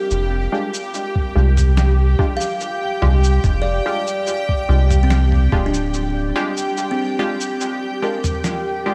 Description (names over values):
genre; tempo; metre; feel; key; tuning
ambient dub; 72 BPM; 4/4; straight; F dorian; A4 = 437 Hz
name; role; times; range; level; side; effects
granular cloud pad; sustained chords; 0.0-8.9 s; G4 to G5; -27 LUFS; equal; built-in reverb, lush chorus
buzzing kalimba; arpeggios; 0.0-8.9 s; C4 to F5; -28 LUFS; equal; vintage 12-bit sampler grit, dub echo
soft dub sub bass; bass; 0.1-6.3 s; D1 to C2; -17 LUFS; equal; none
lo-fi sampler-style drum kit; drums; 0.1-8.6 s; cabasa, snare drum, toms; -29 LUFS; equal; overdrive, dub echo
filtered dub chord stab; stabs; 0.5-8.9 s; Ab3 to G4; -29 LUFS; equal; chorus, dub echo
electronic kick drum; drums; 1.2-5.7 s; none; -22 LUFS; equal; overdrive
room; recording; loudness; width
moderate huge ambient reverb, RT60 4.7 s; dreamy mix soaked in reverb; -19 LUFS; mono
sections
0.0-8.9 A section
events
break 6.8-8.9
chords
0.0 Fm69